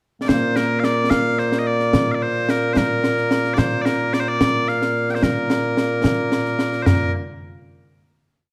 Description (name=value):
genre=scottish traditional, Scottish pipe music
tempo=73 BPM (dotted quarters)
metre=6/8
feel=straight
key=Bb major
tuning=A4 = 441 Hz
part: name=loud bright bagpipes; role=melody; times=0.2-7.1 s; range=Bb2 to G5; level=-22 LUFS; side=equal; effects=slapback echo
part: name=concert snare drum, concert bass drum and concert toms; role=drums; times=0.3-7.0 s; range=none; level=-23 LUFS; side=equal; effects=none
room=wet recital hall reverb, RT60 1.4 s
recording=none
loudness=-20 LUFS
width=mono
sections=0.0-0.3 pickup bar; 0.3-6.9 A section; 6.9-8.5 final note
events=none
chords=none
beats=| 0.29 1.11 | 1.93 2.75 | 3.58 4.40 | 5.22 6.04 | 6.87